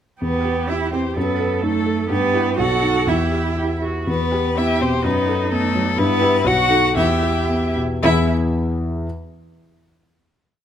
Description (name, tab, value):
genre	quick classical-period movement for piano quartet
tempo	111-130 BPM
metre	2/4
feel	rubato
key	E minor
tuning	A4 = 440 Hz
part	warm violin	melody	0.2-8.3 s	A4 to F#5	-23 LUFS	left 7 dB	none
part	rich cello	second line	0.2-8.3 s	A3 to F#4	-22 LUFS	right 7 dB	none
part	dark concert grand piano	accompaniment	0.2-9.1 s	B1 to E5	-20 LUFS	left 1 dB	none
part	rich viola	accompaniment	0.2-8.3 s	D#4 to A4	-27 LUFS	right 4 dB	none
room	moderate recital hall reverb, RT60 1.6 s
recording	close, detailed microphones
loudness	-17 LUFS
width	side -9 dB against mid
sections	0.2-4.1 A section; 4.1-8.0 A section; 8.0-9.0 final chord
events	none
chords	0.2 Em; 1.2 B7/F#; 2.1 Em/G; 2.6 B7; 3.1 Em; 5.0 B7/F#; 6.0 Em/G; 6.5 B7; 7.0 Em; 8.0 E